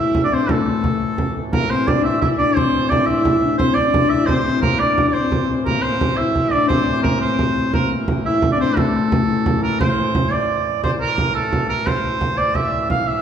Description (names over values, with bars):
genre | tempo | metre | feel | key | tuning
medieval dance | 116 BPM (dotted quarters) | 6/8 | straight | A phrygian | A4 = 440 Hz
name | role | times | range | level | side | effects
bright shawm | melody | 0.0-13.2 s | A4 to F5 | -20 LUFS | right 2 dB | tape echo
warm viola da gamba | second line | 0.0-9.6 s | A3 to E4 | -20 LUFS | left 5 dB | none
hand-pumped harmonium | drone | 0.0-13.2 s | A2 to E3 | -27 LUFS | right 2 dB | none
frame drum | percussion | 0.1-13.2 s | none | -22 LUFS | right 1 dB | none
room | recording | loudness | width
wet recital hall reverb, RT60 1.6 s | heard from further back in the room | -16 LUFS | side -8 dB against mid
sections
0.0-1.5 A section; 1.5-9.8 A section; 9.8-13.2 B section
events
none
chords
none